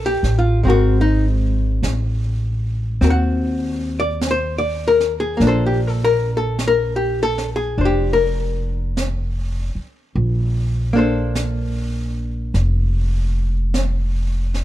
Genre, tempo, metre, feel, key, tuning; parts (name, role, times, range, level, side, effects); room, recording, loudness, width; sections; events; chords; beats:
jazz ballad; 50 BPM; 4/4; swing 66% on 8ths; Bb major; A4 = 440 Hz
archtop guitar, miked and amplified; accompaniment; 0.0-14.6 s; Eb3 to Gb5; -19 LUFS; left 2 dB
upright bass; bass; 0.0-14.6 s; F1 to Eb2; -19 LUFS; equal
jazz brush drum kit; drums; 0.2-14.6 s; brushed snare drum, hi-hat, snare drum; -30 LUFS; right 2 dB
little or no reverb; dark, warm production; -17 LUFS; side -13 dB against mid
0.0-14.6 A section
0.0 Ebadd9; 0.6 Ab9; 5.4 Bbmaj9
| 0.64 1.83 3.02 4.21 | 5.39 6.58 7.77 8.96 | 10.16 11.35 12.55 13.74